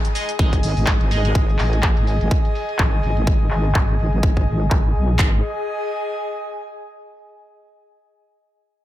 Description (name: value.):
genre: bass house.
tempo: 125 BPM.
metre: 4/4.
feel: swing 57% on 16ths.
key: unclear.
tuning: A4 = 442 Hz.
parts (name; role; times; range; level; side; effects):
house drum kit; drums; 0.0-5.2 s; handclaps, hi-hat, shaker; -27 LUFS; equal; overdrive, low-pass filter on hats, low-pass filter on perc, low-pass filter on snare, low-pass filter on toms, low-pass filter on room.
airy breathy pad; texture; 0.0-7.1 s; G#4 to G#5; -27 LUFS; left 2 dB; chorus, sidechain pumping.
band-passed chord stab; stabs; 0.2-1.5 s; G#3 to D#5; -30 LUFS; right 2 dB; phaser, sidechain pumping, dub echo.
wobble bass; bass; 0.4-5.4 s; G#1 to B1; -20 LUFS; equal; chorus, overdrive, sidechain pumping.
big-room dance drum kit; drums; 0.4-5.3 s; handclaps, kick drum; -18 LUFS; equal; none.
room: little or no reverb.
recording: none.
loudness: -17 LUFS.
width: side -14 dB against mid.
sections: 0.0-5.2 A section; 5.2-7.1 B section.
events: filter sweep on drum 0.0-5.2; filter sweep on wobble bass 0.0-5.2.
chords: 0.0 G#5.